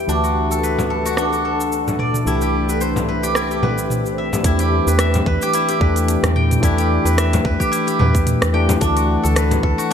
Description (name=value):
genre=organic downtempo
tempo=110 BPM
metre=4/4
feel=swing 55% on 16ths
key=E minor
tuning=A4 = 441 Hz
part: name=tine electric piano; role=accompaniment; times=0.0-9.9 s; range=E3 to G4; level=-22 LUFS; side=left 3 dB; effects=analog chorus, sidechain pumping, low-pass filter, ping-pong delay
part: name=granular cloud pad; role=sustained chords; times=0.0-4.5 s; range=C4 to E5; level=-27 LUFS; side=equal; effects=built-in reverb, analog chorus, sidechain pumping
part: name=steel-string zither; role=arpeggios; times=0.0-9.9 s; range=D4 to G5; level=-21 LUFS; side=equal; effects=ping-pong delay
part: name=woody FM bass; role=bass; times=0.0-9.7 s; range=C2 to E2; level=-20 LUFS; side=right 1 dB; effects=sidechain pumping
part: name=organic electronic drum kit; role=drums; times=0.1-9.9 s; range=hi-hat, rim click, shaker, toms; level=-23 LUFS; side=right 1 dB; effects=overdrive
part: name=frame drum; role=percussion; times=0.8-9.6 s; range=none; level=-25 LUFS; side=left 2 dB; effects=none
part: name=electronic kick drum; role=drums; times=4.4-9.8 s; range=none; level=-21 LUFS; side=equal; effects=overdrive
room=light reverb, digital ambience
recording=bright 1980s-style digital production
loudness=-15 LUFS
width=side -8 dB against mid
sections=0.0-4.5 A section; 4.5-9.9 B section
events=filter sweep on tine electric piano 0.0-4.5; filter sweep on ambient pad 0.0-4.5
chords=0.1 D6; 2.3 Cmaj7; 4.5 Em; 8.8 D6